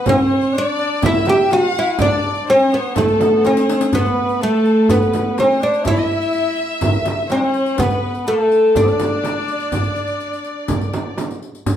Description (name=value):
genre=Arabic maqam ensemble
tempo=124 BPM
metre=4/4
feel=straight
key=D maqam rast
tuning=A4 = 440 Hz
part: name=oud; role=melody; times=0.0-11.1 s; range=A3 to G4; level=-16 LUFS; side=equal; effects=none
part: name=clear chamber violin section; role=second line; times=0.0-11.2 s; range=A4 to F#5-50c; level=-24 LUFS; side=left 1 dB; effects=none
part: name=clear tenor saxophone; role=second line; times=0.0-11.2 s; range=A3 to G4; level=-25 LUFS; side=left 3 dB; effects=none
part: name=darbuka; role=percussion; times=0.1-11.8 s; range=none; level=-24 LUFS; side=right 1 dB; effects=none
part: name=frame drum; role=percussion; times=0.1-11.8 s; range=none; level=-23 LUFS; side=right 3 dB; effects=none
part: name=riq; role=percussion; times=0.1-11.8 s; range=none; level=-28 LUFS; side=left 4 dB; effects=none
room=moderate large studio reverb, RT60 0.9 s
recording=band playing live in one room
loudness=-14 LUFS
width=side -10 dB against mid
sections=0.0-11.7 A section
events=drum fill 3.4-3.9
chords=none